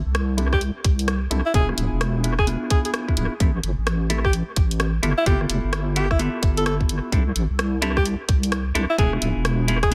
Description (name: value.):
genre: UK garage, two-step garage.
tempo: 129 BPM.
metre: 4/4.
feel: swing 63% on 16ths.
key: unclear.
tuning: A4 = 440 Hz.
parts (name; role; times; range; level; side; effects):
deep soft wobble bass; bass; 0.0-9.9 s; D1 to C2; -25 LUFS; equal; chorus.
garage drum kit; drums; 0.1-9.9 s; hi-hat, rim click; -30 LUFS; equal; small room reverb, dub echo.
clean electric guitar; stabs; 0.4-9.9 s; A3 to A4; -30 LUFS; equal; low-pass filter, analog delay.
clear alto saxophone; melody; 0.5-9.9 s; E4 to A4; -28 LUFS; equal; dub echo.
electronic kick drum; drums; 0.5-9.9 s; none; -22 LUFS; equal; small room reverb.
room: digital ambience.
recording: echo-heavy mix.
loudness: -22 LUFS.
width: mono.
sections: 0.0-9.9 A section.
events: filter sweep on clean electric guitar 0.0-9.9.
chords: 0.0 C69; 1.5 E7b9; 3.4 Am7; 5.0 G13; 7.1 C69; 9.0 E7b9.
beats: 0.15 0.61 1.08 | 1.54 2.01 2.47 2.94 | 3.40 3.87 4.33 4.80 | 5.26 5.73 6.20 6.66 | 7.12 7.59 8.05 8.52 | 8.98 9.45 9.92.